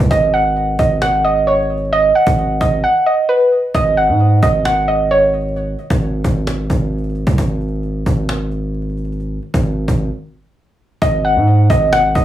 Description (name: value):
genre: hip hop, trap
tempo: 132 BPM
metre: 4/4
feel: half-time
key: G# minor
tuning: A4 = 440 Hz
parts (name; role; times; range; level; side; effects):
- distorted 808-style bass; bass; 0.0-12.2 s; G#1 to G#2; -17 LUFS; equal; distortion
- soft round pluck; melody; 0.1-5.3, 11.0-12.2 s; B4 to F#5; -14 LUFS; right 1 dB; chorus, low-pass filter, tape echo
- cajon; drums; 0.1-12.2 s; none; -23 LUFS; right 1 dB; none
room: light reverb, studio reverb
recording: studio ambience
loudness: -13 LUFS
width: side -12 dB against mid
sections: 0.0-11.0 A section; 11.0-12.2 B section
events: drums muted 2.8-3.7; break 5.6-11.0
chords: 0.0 G#7(no3); 7.4 N.C.; 11.0 G#7(no3)